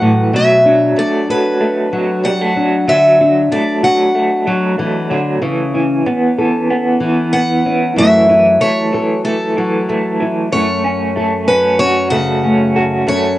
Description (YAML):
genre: acoustic folk duo or small band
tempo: 94 BPM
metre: 4/4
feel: straight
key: unclear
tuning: A4 = 440 Hz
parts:
  - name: picked steel-string acoustic guitar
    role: melody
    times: 0.0-13.4 s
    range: A4 to F#5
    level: -14 LUFS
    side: equal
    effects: cassette tape
  - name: nylon-string guitar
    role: accompaniment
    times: 0.0-13.4 s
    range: F#2 to A4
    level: -17 LUFS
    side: left 1 dB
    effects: cassette tape
  - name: electric guitar through a small old amp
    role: arpeggios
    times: 0.0-13.4 s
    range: E3 to F#4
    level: -16 LUFS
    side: right 1 dB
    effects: tremolo, cassette tape
room: wet booth ambience, RT60 0.2 s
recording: home recording on cassette, nothing above 10.8 kHz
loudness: -11 LUFS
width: side -15 dB against mid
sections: 0.0-10.5 A section; 10.5-13.4 B section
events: none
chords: 0.3 Bm7; 2.9 D; 5.4 Aadd9/C#; 8.0 F#m7